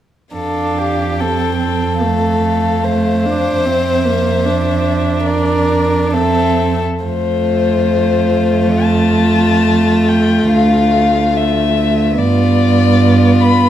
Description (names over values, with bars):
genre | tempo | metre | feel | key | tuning
classical, slow romantic movement for string quartet | 71 BPM | 4/4 | uneven beats, rubato | F major | A4 = 440 Hz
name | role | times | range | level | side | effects
dark violin | melody | 0.3-13.7 s | C5 to B5 | -19 LUFS | left 8 dB | none
warm violin | second line | 0.3-13.7 s | F4 to C5 | -19 LUFS | left 2 dB | none
warm cello | bass | 0.3-13.7 s | D2 to G2 | -17 LUFS | right 4 dB | none
dark viola | accompaniment | 0.4-13.7 s | A3 to D4 | -15 LUFS | right 1 dB | none
room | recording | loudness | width
wet recital hall reverb, RT60 1.5 s | none | -11 LUFS | side -11 dB against mid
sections
0.3-7.1 A section; 7.1-13.7 B section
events
none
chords
0.3 F; 3.7 C7/F; 7.1 F; 10.5 Dm; 12.2 G7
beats
| 0.35 1.20 2.03 2.85 | 3.65 4.45 5.28 6.14 | 7.05 7.91 8.82 9.67 | 10.51 11.36 12.18 13.00